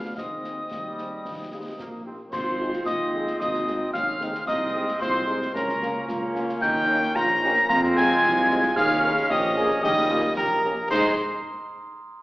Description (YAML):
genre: military-style march for wind band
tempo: 112 BPM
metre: 2/4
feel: straight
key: Ab major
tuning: A4 = 440 Hz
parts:
  - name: warm cornet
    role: melody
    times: 0.0-11.1 s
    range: Bb4 to Bb5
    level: -26 LUFS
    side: equal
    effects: none
  - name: warm euphonium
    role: second line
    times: 0.0-10.6 s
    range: C4 to Ab4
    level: -30 LUFS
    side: right 1 dB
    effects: none
  - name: wooden piccolo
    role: second line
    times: 0.0-11.2 s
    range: Bb5 to Bb6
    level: -27 LUFS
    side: left 1 dB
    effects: none
  - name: bright trombone section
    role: sustained chords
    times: 0.0-11.1 s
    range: F3 to Eb4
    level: -33 LUFS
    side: right 1 dB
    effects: none
  - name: dark tuba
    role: bass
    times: 0.0-11.1 s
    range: Ab1 to Ab2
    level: -30 LUFS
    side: equal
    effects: none
  - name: concert snare drum, concert bass drum and clash cymbals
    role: drums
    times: 0.2-11.2 s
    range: none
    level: -38 LUFS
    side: equal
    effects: none
  - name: mellow French horn section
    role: accompaniment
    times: 0.4-11.1 s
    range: Ab3 to Ab4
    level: -34 LUFS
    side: left 1 dB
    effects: none
  - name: glockenspiel with rubber mallets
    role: second line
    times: 2.3-11.2 s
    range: Bb5 to Bb6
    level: -32 LUFS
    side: left 1 dB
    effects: none
room: wet recital hall reverb, RT60 1.5 s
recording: recorded in a church or concert hall, AM radio sound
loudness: -21 LUFS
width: side -19 dB against mid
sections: 0.0-2.3 A section; 2.3-10.9 B section; 10.9-12.0 C section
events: none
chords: 0.2 Ab/Eb; 1.3 Eb; 2.3 Ab; 4.5 Ab/C; 5.5 Bbm/Db; 6.6 Eb7; 7.7 Fm; 8.8 Eb7sus4; 9.8 Eb7; 10.9 Ab5